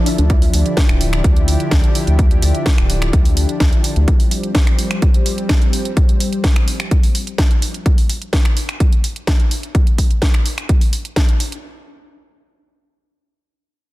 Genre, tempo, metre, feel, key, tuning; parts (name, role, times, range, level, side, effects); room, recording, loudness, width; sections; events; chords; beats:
progressive house; 127 BPM; 4/4; straight; A4 = 440 Hz
lush unison pad; sustained chords; 0.0-7.8 s; D3 to A4; -22 LUFS; left 1 dB; chorus, sidechain pumping
house drum kit; drums; 0.1-11.6 s; finger snaps, hi-hat, snare drum; -23 LUFS; equal; overdrive
round analog bass; bass; 0.2-4.1 s; D1 to D2; -16 LUFS; equal; sidechain pumping
electronic kick drum; drums; 0.3-11.3 s; -14 LUFS; equal; overdrive
digital ambience; dense, heavily limited modern master; -13 LUFS; side -18 dB against mid
0.0-11.6 A section; 11.6-13.9 B section
0.0 Dmadd9; 4.1 Fsus2; 7.9 N.C.
| 0.30 0.77 1.24 1.72 | 2.19 2.66 3.13 3.60 | 4.08 4.55 5.02 5.50 | 5.97 6.44 6.91 7.38 | 7.86 8.33 8.80 9.27 | 9.75 10.22 10.69 11.16